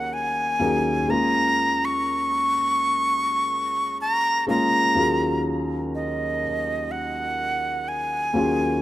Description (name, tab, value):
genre	R&B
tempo	62 BPM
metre	4/4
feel	swing 54% on 16ths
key	Eb minor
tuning	A4 = 439 Hz
part	breathy bright jazz flute	melody	0.0-8.8 s	Eb5 to Db6	-22 LUFS	equal	analog delay
part	felt-muted upright piano	accompaniment	0.0-8.8 s	Eb2 to Ab4	-25 LUFS	left 1 dB	none
room	light reverb, small room ambience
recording	dark, warm production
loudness	-20 LUFS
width	side -14 dB against mid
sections	0.0-5.0 A section; 5.0-8.8 B section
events	none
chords	0.0 Gb69/Eb; 1.1 Bbm7; 5.0 Ebm11